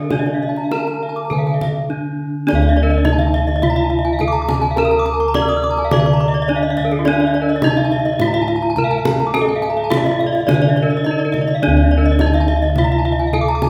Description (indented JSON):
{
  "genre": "Balinese gamelan",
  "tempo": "105 BPM",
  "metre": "4/4",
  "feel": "straight",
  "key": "D pelog",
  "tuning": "A4 = 437 Hz",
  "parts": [
    { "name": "gamelan-type bronze metallophone", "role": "melody", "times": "0.0-13.7 s", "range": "D4 to D5", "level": "-22 LUFS", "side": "equal", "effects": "none" },
    { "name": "gamelan-type bronze metallophone", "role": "arpeggios", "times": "0.0-13.6 s", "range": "A4-30c to Eb6+20c", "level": "-24 LUFS", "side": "equal", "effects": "none" },
    { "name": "gamelan-type bronze metallophone", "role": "arpeggios", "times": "0.0-13.7 s", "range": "F4-30c to F6-30c", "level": "-25 LUFS", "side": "equal", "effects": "none" },
    { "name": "gamelan-type bossed gongs", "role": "bass", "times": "0.0-13.7 s", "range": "D2 to Bb4-20c", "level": "-22 LUFS", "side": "equal", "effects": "none" },
    { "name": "kendang", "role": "percussion", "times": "0.1-13.7 s", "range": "none", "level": "-24 LUFS", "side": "equal", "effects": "none" }
  ],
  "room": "wet recital hall reverb, RT60 1.4 s",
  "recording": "recorded in a church or concert hall",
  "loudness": "-16 LUFS",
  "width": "mono",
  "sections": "0.0-2.5 A section; 2.5-13.7 B section",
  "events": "break 1.6-2.5; drum fill 1.9-2.5",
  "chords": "none",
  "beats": "| 0.11 0.72 1.32 1.91 | 2.48 3.06 3.63 4.20 | 4.77 5.34 5.91 6.49 | 7.06 7.63 8.20 8.77 | 9.34 9.91 10.48 11.05 | 11.63 12.20 12.77 13.34"
}